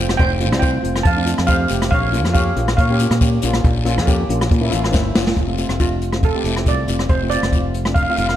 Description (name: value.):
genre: calypso.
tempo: 139 BPM.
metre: 4/4.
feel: straight.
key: F major.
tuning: A4 = 440 Hz.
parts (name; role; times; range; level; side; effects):
steel pan; melody; 0.0-8.4 s; F4 to A5; -22 LUFS; right 3 dB; none.
steel pan; accompaniment; 0.0-8.3 s; A3 to F5; -23 LUFS; left 1 dB; none.
fingered electric bass; bass; 0.0-8.4 s; F1 to Bb2; -20 LUFS; equal; none.
jazz brush drum kit; drums; 0.1-8.4 s; hi-hat, kick drum, rim click, snare drum; -19 LUFS; equal; none.
guiro; percussion; 0.2-8.3 s; none; -30 LUFS; left 7 dB; none.
room: moderate recital hall reverb, RT60 1.4 s.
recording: none.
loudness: -15 LUFS.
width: side -11 dB against mid.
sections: 0.0-5.4 A section; 5.4-8.4 B section.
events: steel pan fill 4.5-5.4; drum fill 4.9-5.4; steel pan solo 5.4-8.4.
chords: 0.0 Fadd9; 1.9 Bbm; 5.4 F6.